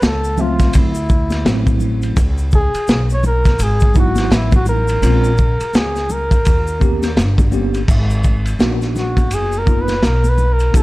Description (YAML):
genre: hip hop, jazz-hop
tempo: 84 BPM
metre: 4/4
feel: swing 61% on 16ths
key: unclear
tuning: A4 = 439 Hz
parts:
  - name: breathy flugelhorn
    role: melody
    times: 0.0-10.8 s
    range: E4 to C#5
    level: -20 LUFS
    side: equal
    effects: none
  - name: upright bass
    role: bass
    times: 0.0-10.8 s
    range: F#1 to D#2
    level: -18 LUFS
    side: equal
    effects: transformer saturation
  - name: crunchy breakbeat drum kit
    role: drums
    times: 0.0-10.8 s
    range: crash cymbal, hi-hat, kick drum, ride cymbal, snare drum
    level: -16 LUFS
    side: equal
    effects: none
  - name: tube shaker and congas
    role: percussion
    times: 0.0-10.8 s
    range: none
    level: -27 LUFS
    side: left 2 dB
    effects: none
  - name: tine electric piano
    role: accompaniment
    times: 0.4-10.8 s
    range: E#3 to E5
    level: -22 LUFS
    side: equal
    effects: medium stereo tremolo
room: studio reverb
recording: dry, gritty hardware recording, faint mains hum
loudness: -13 LUFS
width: side -19 dB against mid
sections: 0.0-7.9 A section; 7.9-10.8 B section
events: flugelhorn solo 7.9-10.8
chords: 0.0 D#m7b5 (rootless); 0.7 D9; 2.2 C#m11; 5.0 A#m7; 6.5 D#7b13; 7.9 G#m9